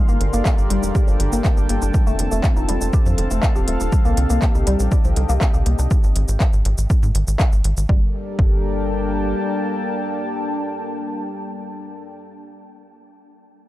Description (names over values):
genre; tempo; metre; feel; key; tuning
melodic techno; 121 BPM; 4/4; straight; G minor; A4 = 440 Hz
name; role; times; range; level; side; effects
warm analog pad; sustained chords; 0.0-12.2 s; G3 to D5; -28 LUFS; left 2 dB; chorus, sidechain pumping
woody wave-folded pluck; arpeggios; 0.0-8.5 s; D3 to G4; -26 LUFS; left 2 dB; analog chorus, sidechain pumping, tape echo
warbly tape-like pad; texture; 0.0-12.4 s; Bb3 to C6; -28 LUFS; left 1 dB; chorus, built-in reverb, sidechain pumping
tight sequencer bass; bass; 0.1-9.3 s; Eb1 to Ab2; -20 LUFS; equal; sidechain pumping
techno drum kit; drums; 0.1-7.9 s; handclaps, hi-hat, shaker; -28 LUFS; left 1 dB; overdrive
electronic kick drum; drums; 0.5-8.5 s; none; -17 LUFS; equal; overdrive
room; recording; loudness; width
little or no reverb; dark, warm production; -16 LUFS; side -16 dB against mid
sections
0.0-7.9 A section; 7.9-11.9 B section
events
drop 0.0-7.9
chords
0.0 Gmadd9; 1.9 F; 3.9 Cm; 5.9 N.C.; 7.9 Gmadd9